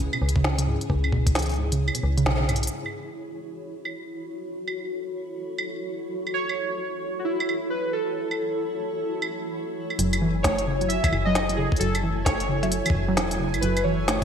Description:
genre	IDM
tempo	132 BPM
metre	4/4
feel	swing 62% on 16ths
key	F# minor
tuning	A4 = 440 Hz
part	granular cloud pad	sustained chords	0.0-14.2 s	C#4 to C#5	-31 LUFS	left 1 dB	built-in reverb, lush chorus
part	metallic FM bass	bass	0.0-2.7, 10.0-14.2 s	E1 to C#2	-26 LUFS	equal	none
part	warbly dusty pluck	arpeggios	0.1-2.6, 10.0-14.2 s	G#2 to A3	-27 LUFS	right 2 dB	chorus, digital delay
part	organic electronic drum kit	drums	0.1-14.2 s	claves, cowbell, hi-hat, snare drum	-28 LUFS	equal	overdrive, low-pass filter on perc, studio reverb, low-pass filter on hats, low-pass filter on snare, gated reverb
part	electronic kick drum	drums	0.4-1.3, 10.4-13.0 s	none	-25 LUFS	equal	overdrive, studio reverb
part	warbly lo-fi synth keys	melody	6.3-14.2 s	E4 to E5	-28 LUFS	right 1 dB	chorus, phaser, digital delay
part	bubbling stepped-filter texture	texture	10.0-14.2 s	A3 to G#5	-37 LUFS	equal	chorus, built-in reverb
room	moderate lush hall reverb, RT60 1.9 s, digital ambience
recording	bright 1980s-style digital production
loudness	-23 LUFS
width	side -8 dB against mid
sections	0.0-2.7 A section; 2.7-10.0 B section; 10.0-14.2 C section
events	band accent 2.3; drum fill 2.5; filter sweep on ambient pad 2.7-10.0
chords	0.0 C#m7; 2.7 F#m7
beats	0.44 | 0.90 1.35 1.81 2.26 | 2.72 3.17 3.62 4.08 | 4.53 4.99 5.44 5.90 | 6.35 6.81 7.26 7.72 | 8.17 8.62 9.08 9.53 | 9.99 10.44 10.90 11.35 | 11.81 12.26 12.72 13.17 | 13.62 14.08

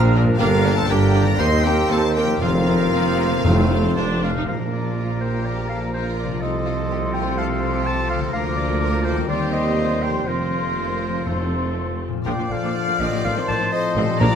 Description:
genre	classical, dramatic, fast romantic movement for symphony orchestra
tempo	122 BPM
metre	4/4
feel	straight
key	Bb major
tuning	A4 = 438 Hz
part	clear oboe	second line	0.0-14.4 s	F4 to F5	-32 LUFS	right 1 dB	none
part	large flute ensemble	second line	0.0-14.4 s	Bb4-21c to F6	-30 LUFS	left 2 dB	none
part	warm clarinet	second line	0.0-14.4 s	C4 to Bb5	-28 LUFS	left 1 dB	none
part	mellow bassoon	accompaniment	0.0-14.4 s	D3 to Bb3	-31 LUFS	right 2 dB	none
part	dark French horn section	sustained chords	0.0-14.4 s	A3 to G4	-30 LUFS	left 4 dB	none
part	dark trombone section	sustained chords	0.0-14.4 s	A2 to Bb3	-32 LUFS	right 3 dB	none
part	concert harp	arpeggios	0.0-14.4 s	G2 to D5	-29 LUFS	left 9 dB	none
part	mellow trumpet	stabs	0.0-14.4 s	Bb4 to D5	-31 LUFS	right 2 dB	none
part	bright symphonic double bass section	bass	0.0-14.3 s	F1 to Eb2	-26 LUFS	right 2 dB	none
part	clear symphonic cello section	bass	0.0-14.4 s	D2 to C3	-27 LUFS	right 1 dB	none
part	warm tuba	bass	0.0-14.3 s	F1 to Eb2	-28 LUFS	right 4 dB	none
part	rich symphonic violin section	second line	0.1-14.4 s	C4 to D5	-34 LUFS	equal	none
part	clear symphonic viola section	accompaniment	0.2-14.4 s	D3 to Eb4	-31 LUFS	right 2 dB	none
part	rich symphonic violin section	melody	0.4-14.4 s	Eb4 to C6	-31 LUFS	left 4 dB	none
part	timpani	percussion	2.4-5.2, 11.3-14.4 s	F2 to Bb2	-24 LUFS	left 1 dB	none
room	moderate recital hall reverb, RT60 1.4 s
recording	none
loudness	-18 LUFS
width	side -8 dB against mid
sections	0.0-4.5 A section; 4.5-14.4 B section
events	none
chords	0.4 Gm7; 1.4 Cm7/Eb; 2.4 Fsus4; 3.5 F; 4.5 Bb; 6.4 F7/C; 8.3 Bb/D; 9.3 Cm/Eb; 10.3 Fsus4; 12.3 Bb; 13.2 F7/A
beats	| 0.40 0.90 1.40 1.90 | 2.42 2.94 3.46 3.97 | 4.49 4.97 5.46 5.94 | 6.42 6.90 7.38 7.86 | 8.34 8.81 9.29 9.78 | 10.27 10.77 11.27 11.76 | 12.26 12.75 13.24 13.72 | 14.21

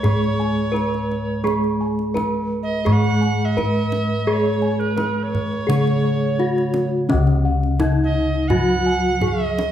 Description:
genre	Javanese gamelan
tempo	85 BPM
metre	4/4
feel	straight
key	Db slendro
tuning	A4 = 440 Hz
part	gamelan-type bronze metallophone	melody	0.0-9.7 s	Db4 to Cb5-45c	-23 LUFS	equal	none
part	breathy bright alto recorder	second line	0.0-9.7 s	Bb4+50c to Gb5-31c	-26 LUFS	right 3 dB	none
part	gamelan-type bronze metallophone	accompaniment	0.0-9.7 s	Db3 to Ab3+25c	-24 LUFS	equal	none
part	gamelan-type bossed gongs	arpeggios	0.0-9.6 s	Db5 to Cb6-45c	-30 LUFS	equal	none
part	gamelan-type bossed gongs	bass	0.0-9.7 s	Db2 to Ab4+25c	-22 LUFS	left 1 dB	none
part	kendang	percussion	0.0-9.7 s	none	-29 LUFS	right 2 dB	none
room	wet large studio reverb, RT60 1.3 s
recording	band playing live in one room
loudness	-17 LUFS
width	side -10 dB against mid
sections	0.0-7.1 A section; 7.1-9.7 A section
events	none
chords	none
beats	0.04 0.75 | 1.46 2.16 2.87 3.57 | 4.28 4.99 5.69 6.40 | 7.10 7.81 8.51 9.22

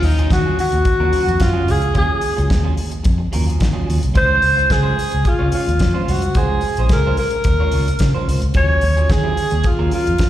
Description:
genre	disco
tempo	109 BPM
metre	4/4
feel	straight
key	unclear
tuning	A4 = 440 Hz
part	breathy alto saxophone	melody	0.0-10.3 s	Eb4 to Db5	-18 LUFS	equal	slapback echo
part	electric guitar at the edge of break-up	accompaniment	0.0-10.2 s	Gb3 to Db5	-27 LUFS	right 5 dB	slapback echo
part	vintage muted fingered electric bass	bass	0.0-10.3 s	Bb1 to Eb3	-18 LUFS	equal	none
part	warm soul drum kit	drums	0.0-10.3 s	hi-hat, kick drum, snare drum	-20 LUFS	equal	none
room	studio ambience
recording	live gig heard through the venue's PA, recital hall reverb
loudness	-14 LUFS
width	side -12 dB against mid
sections	0.0-10.3 A section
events	none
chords	0.0 Ebm11; 4.2 Bbm9; 8.5 Ebm11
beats	0.31 0.86 1.41 | 1.96 2.50 3.05 3.60 | 4.15 4.70 5.25 5.80 | 6.35 6.90 7.45 8.00 | 8.55 9.10 9.65 10.20

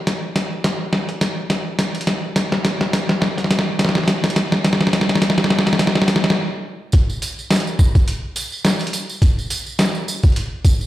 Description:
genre	glitch hop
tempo	105 BPM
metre	4/4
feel	swing 56% on 16ths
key	none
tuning	none
part	boom bap sampler-style drum kit	drums	0.1-10.8 s	hi-hat, rim click, snare drum	-17 LUFS	equal	none
part	electronic kick drum	drums	0.1-10.8 s	none	-15 LUFS	equal	high-pass filter on kick, high-pass filter on room
part	tambourine	percussion	6.9-10.9 s	none	-28 LUFS	right 3 dB	none
room	moderate digital room reverb, RT60 1.3 s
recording	played on a big sound system in a bare room, stone room reverb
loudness	-16 LUFS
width	side -14 dB against mid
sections	0.0-6.9 A section; 6.9-10.9 B section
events	build-up 0.0-6.9; drum fill 0.0-6.4; stop 6.4-6.9; drop 6.9-10.9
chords	none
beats	| 0.07 0.65 1.22 1.79 | 2.36 2.93 3.50 4.07 | 4.64 5.22 5.79 6.36 | 6.93 7.50 8.07 8.64 | 9.22 9.79 10.36

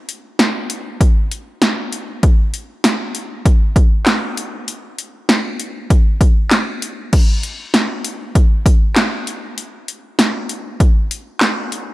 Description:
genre	pop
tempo	98 BPM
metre	4/4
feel	straight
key	none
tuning	none
part	punchy analog drum machine	drums	0.1-11.9 s	crash cymbal, handclaps, hi-hat, kick drum, snare drum	-14 LUFS	equal	overdrive
room	light reverb, digital ambience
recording	none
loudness	-14 LUFS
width	side -18 dB against mid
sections	0.0-7.1 A section; 7.1-11.9 B section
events	none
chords	none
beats	0.39 1.01 1.62 | 2.23 2.84 3.46 4.07 | 4.68 5.29 5.90 6.52 | 7.13 7.74 8.35 8.97 | 9.58 10.19 10.80 11.41

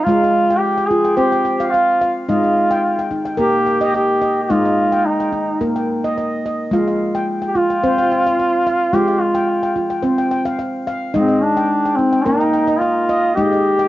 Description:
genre	world meditative, meditative tuned percussion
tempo	108 BPM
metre	4/4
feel	straight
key	unclear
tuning	A4 = 440 Hz
part	warm duduk	melody	0.0-13.9 s	C4 to Ab4	-16 LUFS	equal	cassette tape, plate reverb, tape echo
part	handpan	arpeggios	0.0-13.9 s	Ab3 to G5	-18 LUFS	equal	cassette tape, plate reverb
room	wet booth ambience, RT60 0.3 s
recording	home recording on cassette, nothing above 7.6 kHz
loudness	-14 LUFS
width	side -15 dB against mid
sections	0.0-13.9 A section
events	none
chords	0.0 F5; 2.3 Eb/Ab; 6.7 F5; 11.1 Eb/Ab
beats	| 0.07 0.62 1.18 1.73 | 2.28 2.84 3.39 3.94 | 4.50 5.05 5.60 6.16 | 6.71 7.26 7.82 8.37 | 8.93 9.48 10.04 10.59 | 11.15 11.70 12.26 12.82 | 13.37

